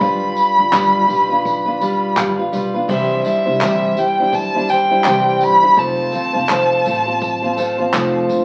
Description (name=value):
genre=acoustic pop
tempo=83 BPM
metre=4/4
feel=swing 60% on 16ths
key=C major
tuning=A4 = 440 Hz
part: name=rich violin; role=melody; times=0.0-8.3 s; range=E5 to B5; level=-18 LUFS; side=equal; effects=none
part: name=picked steel-string acoustic guitar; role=accompaniment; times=0.0-8.4 s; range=C3 to C5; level=-21 LUFS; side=equal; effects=none
part: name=upright bass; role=bass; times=0.0-8.4 s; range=F1 to E2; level=-32 LUFS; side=equal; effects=none
part: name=jazz brush drum kit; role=drums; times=0.0-8.4 s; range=crash cymbal, handclaps, kick drum, tambourine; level=-26 LUFS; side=equal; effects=none
part: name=tambourine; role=percussion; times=0.0-8.4 s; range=none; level=-43 LUFS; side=equal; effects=none
room=wet studio reverb, RT60 0.8 s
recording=very old 78 rpm record, vinyl crackle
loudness=-16 LUFS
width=mono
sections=0.0-2.9 A section; 2.9-8.4 B section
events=none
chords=0.0 G7; 2.9 Cadd9; 5.8 F